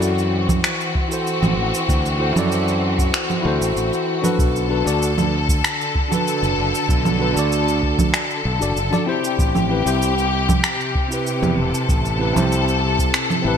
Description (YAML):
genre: sunset chillout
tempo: 96 BPM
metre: 4/4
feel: straight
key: unclear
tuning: A4 = 439 Hz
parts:
  - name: tine electric piano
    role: accompaniment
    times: 0.0-13.6 s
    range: C4 to D5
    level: -23 LUFS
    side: moving between left 5 dB and right 6 dB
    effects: auto-pan, digital delay
  - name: warm studio string section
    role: sustained chords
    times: 0.0-13.6 s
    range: C3 to A4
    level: -22 LUFS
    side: left 3 dB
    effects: none
  - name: growling fingered electric bass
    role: bass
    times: 0.0-13.6 s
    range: E1 to F#2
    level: -22 LUFS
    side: equal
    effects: overdrive, tube saturation
  - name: electronic shaker, congas and finger snaps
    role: drums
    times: 0.0-13.4 s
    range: none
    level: -23 LUFS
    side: right 3 dB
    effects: overdrive, gated reverb
  - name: electronic kick drum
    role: drums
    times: 0.5-13.1 s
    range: none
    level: -20 LUFS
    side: equal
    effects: none
room: moderate lush hall reverb, RT60 2.4 s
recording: bright 1980s-style digital production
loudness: -17 LUFS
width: side -8 dB against mid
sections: 0.0-13.6 A section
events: none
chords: 0.0 D9; 4.4 Bm7; 9.1 Am9